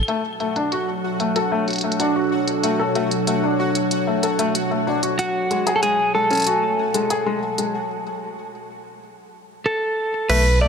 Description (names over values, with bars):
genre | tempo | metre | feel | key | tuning
IDM | 94 BPM | 4/4 | straight | B dorian | A4 = 440 Hz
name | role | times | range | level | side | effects
round analog bass | bass | 0.0, 10.3-10.7 s | B1 | -17 LUFS | equal | none
glitchy drum kit | drums | 0.0-10.4 s | claves, crash cymbal, hi-hat | -27 LUFS | equal | low-pass filter on snare, low-pass filter on hats, low-pass filter on perc, low-pass filter on cymbals, low-pass filter on room
pulsing gated texture | texture | 0.0-7.7 s | F#4 to F#5 | -30 LUFS | equal | chorus, built-in reverb
warbly tape-like pad | sustained chords | 0.1-7.7 s | B2 to G#5 | -24 LUFS | right 1 dB | chorus, built-in reverb
felt-muted upright piano | arpeggios | 0.1-10.7 s | G#3 to A4 | -24 LUFS | left 4 dB | low-pass filter, ping-pong delay
clean electric guitar | melody | 5.2-10.7 s | F#4 to D5 | -21 LUFS | right 1 dB | ping-pong delay
room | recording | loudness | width
moderate huge ambient reverb, RT60 4.6 s | none | -18 LUFS | side -6 dB against mid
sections
0.1-10.3 A section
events
break 7.7-10.3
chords
0.1 Bm7; 5.2 F#madd9/B